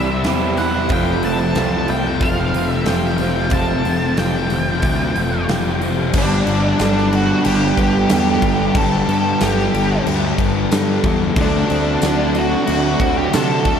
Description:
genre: rock, shoegaze and dream pop.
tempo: 92 BPM.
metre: 4/4.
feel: straight.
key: G major.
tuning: A4 = 440 Hz.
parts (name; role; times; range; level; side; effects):
octave-fuzz lead guitar; melody; 0.0-13.8 s; D4 to A5; -22 LUFS; left 1 dB; distortion, diffuse ambient delay.
direct-recorded clean electric guitar; arpeggios; 0.0-13.8 s; F3 to A4; -26 LUFS; right 8 dB; wide subtle chorus, diffuse ambient delay.
crunchy overdriven guitar; riff; 0.0-13.8 s; F2 to B4; -23 LUFS; right 7 dB; reverse reverb.
thick fuzz guitar; riff; 0.0-13.8 s; F2 to D4; -20 LUFS; left 6 dB; distortion, analog chorus.
fuzz picked electric bass; bass; 0.0-13.8 s; F1 to C3; -22 LUFS; equal; overdrive.
huge arena drum kit; drums; 0.2-13.8 s; crash cymbal, hi-hat, kick drum, snare drum; -22 LUFS; equal; none.
tambourine; percussion; 6.8-13.5 s; none; -35 LUFS; left 8 dB; none.
room: wet huge ambient reverb, RT60 7.8 s.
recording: dreamy mix soaked in reverb.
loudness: -15 LUFS.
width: side -7 dB against mid.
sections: 0.0-6.1 A section; 6.1-13.8 B section.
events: none.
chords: 0.0 C; 0.9 Fadd9; 6.1 Gadd9; 11.4 D7.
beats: 0.27 | 0.92 1.57 2.22 2.87 | 3.53 4.18 4.83 5.48 | 6.14 6.79 7.44 8.10 | 8.75 9.40 10.06 10.71 | 11.37 12.02 12.67 13.33.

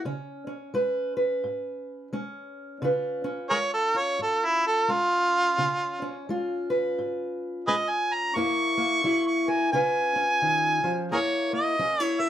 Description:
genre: acoustic country blues, solo or duo.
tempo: 87 BPM.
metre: 4/4.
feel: swing 60% on 8ths.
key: unclear.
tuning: A4 = 444 Hz.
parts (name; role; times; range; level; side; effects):
warm harmonica; melody; 0.0-12.3 s; E4 to C#6; -23 LUFS; right 1 dB; none.
fingerpicked steel-string acoustic guitar; accompaniment; 0.0-12.3 s; F#2 to B4; -28 LUFS; equal; none.
room: moderate studio reverb, RT60 0.6 s.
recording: none.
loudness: -23 LUFS.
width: side -11 dB against mid.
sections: 0.0-11.1 A section; 11.1-12.3 B section.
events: harmonica solo 0.0-11.1.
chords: 0.1 C#7; 8.3 F#7; 9.7 C#7; 11.1 F#7.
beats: | 0.05 0.75 1.44 2.13 | 2.82 3.51 4.20 4.89 | 5.58 6.28 6.96 7.66 | 8.35 9.04 9.72 10.41 | 11.11 11.80.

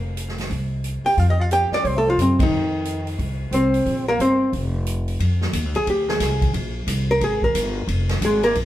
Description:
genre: jazz, small-group swing and bop.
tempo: 179 BPM.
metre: 4/4.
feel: swing 64% on 8ths.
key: Bb mixolydian.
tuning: A4 = 444 Hz.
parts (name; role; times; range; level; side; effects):
upright bass; bass; 0.0-8.7 s; F1 to Gb2; -23 LUFS; equal; none.
swinging big-band drum kit; drums; 0.2-8.7 s; hi-hat, kick drum, ride cymbal, snare drum; -27 LUFS; equal; none.
archtop guitar, miked and amplified; melody; 1.1-8.6 s; Ab3 to G5; -20 LUFS; equal; none.
breathy tenor saxophone; second line; 1.1-4.5 s; C3 to G4; -28 LUFS; right 2 dB; none.
room: wet stone room reverb, RT60 1.3 s.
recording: band playing live in one room.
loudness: -18 LUFS.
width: side -13 dB against mid.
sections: 0.0-5.2 A section; 5.2-8.7 B section.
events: band accent 2.3; hollow-body jazz guitar solo 5.2-8.7.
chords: 0.0 F5; 3.9 Bbsus2; 4.5 N.C.; 5.2 Bb9.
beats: 0.16 0.50 0.84 | 1.17 1.51 1.84 2.18 | 2.51 2.85 3.19 3.52 | 3.86 4.19 4.53 4.86 | 5.20 5.53 5.87 6.20 | 6.54 6.87 7.21 7.54 | 7.88 8.22 8.55.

